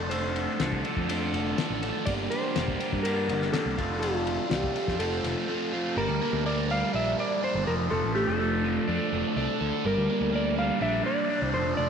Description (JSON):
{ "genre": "psychedelic rock", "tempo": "123 BPM", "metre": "4/4", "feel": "straight", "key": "G minor", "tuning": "A4 = 440 Hz", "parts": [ { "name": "clean lap steel guitar", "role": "melody", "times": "0.0-11.9 s", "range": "F4 to F5", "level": "-31 LUFS", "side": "equal", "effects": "slapback echo" }, { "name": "hand-pumped harmonium", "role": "sustained chords", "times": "0.0-11.9 s", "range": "F3 to Bb5", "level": "-38 LUFS", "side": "right 10 dB", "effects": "none" }, { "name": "biting overdriven guitar", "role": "riff", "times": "0.0-11.9 s", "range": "F3 to A4", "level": "-28 LUFS", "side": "equal", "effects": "phaser" }, { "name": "fuzz picked electric bass", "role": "bass", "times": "0.0-11.9 s", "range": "E1 to G2", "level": "-32 LUFS", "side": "equal", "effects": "overdrive" }, { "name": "cloth-damped thuddy drum kit", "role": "drums", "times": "0.1-5.4 s", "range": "kick drum, ride cymbal, snare drum", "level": "-33 LUFS", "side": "left 5 dB", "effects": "none" } ], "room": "light reverb, studio reverb", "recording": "1960s-style stereo", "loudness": "-25 LUFS", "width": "side -7 dB against mid", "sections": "0.0-6.0 A section; 6.0-11.9 B section", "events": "none", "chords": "0.0 Dm/F; 2.1 Gm; 3.8 Dm/F; 5.0 F; 6.0 Gm; 7.7 Dm/F; 9.9 Gm" }